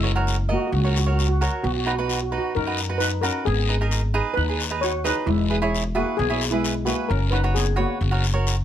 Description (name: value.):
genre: calypso.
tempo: 132 BPM.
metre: 4/4.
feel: straight.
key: unclear.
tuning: A4 = 440 Hz.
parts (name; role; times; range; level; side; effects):
steel pan; melody; 0.0-8.6 s; G#3 to C#5; -26 LUFS; left 1 dB; none.
cavaquinho; accompaniment; 0.0-8.6 s; D#4 to D#5; -27 LUFS; right 4 dB; none.
upright bass; bass; 0.0-8.6 s; E1 to F#2; -23 LUFS; equal; none.
guiro; percussion; 0.3-8.6 s; none; -31 LUFS; left 6 dB; none.
room: light reverb.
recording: close, detailed microphones.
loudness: -20 LUFS.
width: side -10 dB against mid.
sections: 0.0-8.6 A section.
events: none.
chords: 0.0 F#add9; 1.6 B; 3.5 G#m; 5.3 E; 7.1 F#sus4; 8.0 F#.